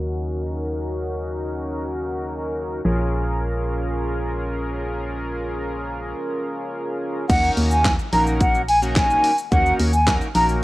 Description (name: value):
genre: dance-pop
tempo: 108 BPM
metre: 4/4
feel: straight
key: Eb minor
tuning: A4 = 440 Hz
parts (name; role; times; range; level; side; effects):
- chorused polysynth; accompaniment; 0.0-10.6 s; Bb3 to Bb4; -26 LUFS; equal; sidechain pumping, low-pass filter, cassette tape
- organ-like FM bass; bass; 0.0-10.6 s; Bb1 to Eb2; -24 LUFS; equal; sidechain pumping
- mellow silver concert flute; melody; 7.3-10.5 s; Gb5 to Bb5; -19 LUFS; equal; none
- pop drum kit; drums; 7.3-10.6 s; crash cymbal, handclaps, hi-hat, kick drum, shaker, snare drum; -22 LUFS; equal; none
room: light reverb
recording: home recording on cassette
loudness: -20 LUFS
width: side -18 dB against mid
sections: 0.0-7.3 A section; 7.3-10.6 B section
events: filter sweep on analog polysynth 0.0-7.3; drop 7.3-10.6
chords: 0.0 Ebm7; 2.9 Bbm7; 7.3 Ebm7